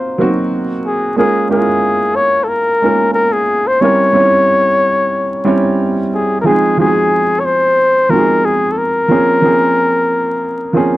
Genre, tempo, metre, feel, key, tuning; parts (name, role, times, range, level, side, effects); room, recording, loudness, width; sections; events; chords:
R&B; 91 BPM; 4/4; swing 57% on 16ths; A4 = 439 Hz
breathy flugelhorn; melody; 0.0-11.0 s; Ab4 to Db5; -13 LUFS; left 1 dB
warm baby grand piano; accompaniment; 0.0-11.0 s; F3 to Db5; -15 LUFS; right 2 dB
light reverb; dry, close 1970s-style studio recording, vinyl crackle; -11 LUFS; side -16 dB against mid
0.0-11.0 A section
0.0 Cm7b5; 1.2 Db6; 3.8 C7b9; 6.4 Fm7; 9.1 Bbm9